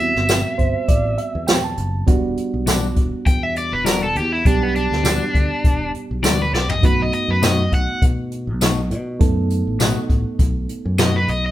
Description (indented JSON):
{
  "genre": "straight-eighth soul blues",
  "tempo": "101 BPM",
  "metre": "4/4",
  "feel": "swing 54% on 16ths",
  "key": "E minor",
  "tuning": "A4 = 440 Hz",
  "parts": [
    { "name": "cranked stack guitar", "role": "melody", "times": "0.0-11.5 s", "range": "B3 to G5", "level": "-22 LUFS", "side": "left 1 dB", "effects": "overdrive" },
    { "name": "reed electric piano", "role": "accompaniment", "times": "0.0-11.5 s", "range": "G3 to A5", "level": "-25 LUFS", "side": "right 4 dB", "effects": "overdrive" },
    { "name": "fingered electric bass", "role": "bass", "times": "0.0-11.5 s", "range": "E1 to B2", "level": "-23 LUFS", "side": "equal", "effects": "none" },
    { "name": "jazz brush drum kit", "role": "drums", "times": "0.0-11.4 s", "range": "hi-hat, kick drum, snare drum, tambourine, toms", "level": "-18 LUFS", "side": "equal", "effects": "none" },
    { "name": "clean electric guitar", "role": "stabs", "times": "2.7-11.2 s", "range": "B2 to F#4", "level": "-24 LUFS", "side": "left 5 dB", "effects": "spring reverb" }
  ],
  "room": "moderate large studio reverb, RT60 0.9 s",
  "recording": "band playing live in one room",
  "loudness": "-16 LUFS",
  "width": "side -14 dB against mid",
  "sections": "0.0-11.5 A section",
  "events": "reed electric piano fill 0.3-2.1; drum fill 6.5",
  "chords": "0.0 Am9; 2.1 Em9; 6.8 B7",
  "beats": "0.30 0.89 1.49 | 2.08 2.67 3.27 3.86 | 4.46 5.05 5.64 6.24 | 6.83 7.42 8.02 8.61 | 9.20 9.80 10.39 10.98"
}